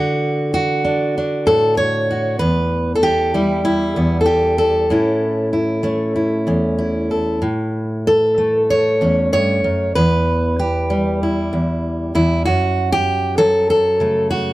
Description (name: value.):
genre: folk, solo fingerstyle acoustic guitar.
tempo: 96 BPM.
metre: 4/4.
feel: straight.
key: E dorian.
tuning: A4 = 440 Hz.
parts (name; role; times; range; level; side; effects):
fingerpicked steel-string acoustic guitar; solo; 0.0-14.5 s; E2 to C#5; -15 LUFS; equal; none.
room: light reverb.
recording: dry, close 1970s-style studio recording.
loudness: -15 LUFS.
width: side -17 dB against mid.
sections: 0.0-14.5 A section.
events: none.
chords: 0.0 D; 2.4 Em; 4.9 A; 10.0 Em; 12.5 F#m.